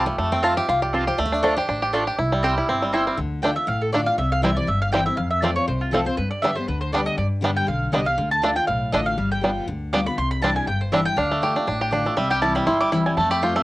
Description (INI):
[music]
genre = bluegrass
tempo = 240 BPM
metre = 4/4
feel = swing 54% on 8ths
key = C major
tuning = A4 = 440 Hz
[part]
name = picked steel-string acoustic guitar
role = accompaniment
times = 0.0-13.6 s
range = F2 to A5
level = -26 LUFS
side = left 3 dB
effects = none
[part]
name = bluegrass banjo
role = arpeggios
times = 0.0-13.6 s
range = G3 to G4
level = -21 LUFS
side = right 1 dB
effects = none
[part]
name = mandolin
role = stabs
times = 0.0-13.6 s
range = A3 to D6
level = -24 LUFS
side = right 1 dB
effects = none
[part]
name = upright bass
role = bass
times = 0.0-13.6 s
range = G1 to G2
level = -28 LUFS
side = equal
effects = none
[sound]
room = moderate small room reverb, RT60 0.5 s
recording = home recording on cassette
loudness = -19 LUFS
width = side -18 dB against mid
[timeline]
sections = 0.0-3.2 A section; 3.2-11.2 A section; 11.2-13.6 A section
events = steel-string acoustic guitar solo 0.0-3.2; mandolin solo 3.2-13.6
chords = 0.0 F; 1.2 Dm; 2.2 C; 3.2 Dm; 4.2 C; 5.2 F; 6.2 G; 8.2 Dm; 9.2 G7; 10.2 Cadd9; 11.2 Dm; 12.2 C